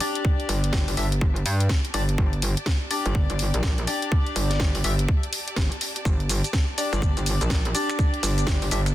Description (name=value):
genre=bass house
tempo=124 BPM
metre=4/4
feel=swing 62% on 16ths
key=unclear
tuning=A4 = 440 Hz
part: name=percussive organ stab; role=stabs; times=0.0-8.8 s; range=D4 to E5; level=-29 LUFS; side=left 3 dB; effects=lush chorus, sidechain pumping, ping-pong delay
part: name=garage drum kit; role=drums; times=0.0-8.9 s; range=finger snaps, hi-hat, shaker, snare drum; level=-29 LUFS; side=equal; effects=studio ambience
part: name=warm symphonic string section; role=texture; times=0.0-8.9 s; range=G4 to A5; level=-38 LUFS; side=equal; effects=sidechain pumping
part: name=electronic kick drum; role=drums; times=0.2-8.6 s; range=none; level=-23 LUFS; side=equal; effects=studio ambience
part: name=metallic wobble bass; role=bass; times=0.5-8.9 s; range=G1 to G2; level=-24 LUFS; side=equal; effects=chorus, overdrive, sidechain pumping
room=digital ambience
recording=dense, heavily limited modern master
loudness=-21 LUFS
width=side -14 dB against mid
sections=0.0-8.9 A section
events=fade-in on string section 0.0-8.9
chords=0.0 G5